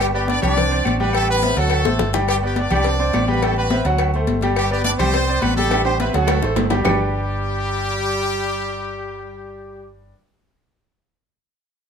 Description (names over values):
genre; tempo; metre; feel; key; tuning
latin, salsa; 210 BPM; 4/4; straight; G major; A4 = 441 Hz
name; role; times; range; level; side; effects
brilliant horn section; melody; 0.0-9.9 s; G3 to D5; -23 LUFS; equal; none
clear concert grand piano; accompaniment; 0.0-10.1 s; F#3 to G5; -23 LUFS; equal; none
hollow-body short-scale fingered electric bass; bass; 0.0-10.1 s; G1 to D2; -23 LUFS; equal; none
claves; percussion; 0.0-6.9 s; none; -32 LUFS; left 6 dB; none
cowbell and bongos; percussion; 0.0-6.9 s; none; -26 LUFS; left 8 dB; none
congas; percussion; 0.1-6.9 s; none; -26 LUFS; left 4 dB; none
agogo bells and timbales; percussion; 0.3-6.9 s; none; -27 LUFS; right 5 dB; none
room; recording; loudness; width
light reverb; minimal, uncompressed stereo recording; -17 LUFS; side -7 dB against mid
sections
0.0-6.9 A section; 6.9-9.1 B section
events
drum fill 1.9-2.3, 5.7-6.9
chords
0.0 G; 0.6 Csus2; 1.1 Am7; 1.7 D7; 2.3 G; 2.9 Csus2; 3.4 Am7; 4.0 D7; 4.6 G; 5.1 Csus2; 5.7 Am7; 6.3 D7; 6.9 G